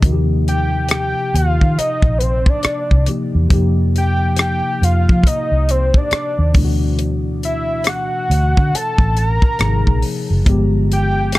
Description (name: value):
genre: R&B, neo-soul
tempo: 69 BPM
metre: 4/4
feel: swing 61% on 16ths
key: Eb major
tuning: A4 = 440 Hz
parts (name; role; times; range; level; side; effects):
- tine electric piano; accompaniment; 0.0-11.4 s; Cb3 to Ab4; -22 LUFS; left 2 dB; lush chorus
- vintage muted fingered electric bass; bass; 0.0-11.4 s; Gb1 to F3; -16 LUFS; equal; none
- tight funk drum kit; drums; 0.0-11.4 s; hi-hat, kick drum, rim click; -16 LUFS; equal; none
- fat analog lead; melody; 0.5-11.4 s; Cb5 to Bb5; -21 LUFS; equal; plate reverb
room: light reverb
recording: dark, warm production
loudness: -14 LUFS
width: side -18 dB against mid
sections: 0.0-11.4 A section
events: none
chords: 0.0 Ebadd9; 3.5 Fsus2; 6.5 Dadd9; 9.6 Ab9; 10.5 G7b9